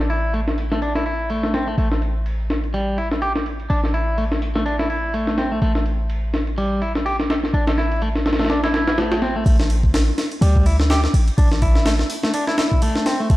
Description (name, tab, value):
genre	breakbeat, breaks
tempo	125 BPM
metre	4/4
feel	swing 57% on 16ths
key	A minor pentatonic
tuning	A4 = 440 Hz
part	warm 808-style bass	bass	0.0-13.4 s	A1 to D2	-21 LUFS	equal	none
part	breakbeat sampler-style drum kit	drums	0.0-13.4 s	hi-hat, kick drum, ride cymbal, snare drum	-21 LUFS	equal	low-pass filter on cymbals, low-pass filter on snare, low-pass filter on hats, low-pass filter on kick, low-pass filter on room
part	clean electric guitar	riff	0.1-13.4 s	G3 to G4	-24 LUFS	equal	overdrive, spring reverb, dub echo
room	light reverb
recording	dark, warm production, vinyl crackle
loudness	-17 LUFS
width	side -17 dB against mid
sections	0.0-9.5 A section; 9.5-13.4 B section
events	drop 9.5-13.4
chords	0.0 A5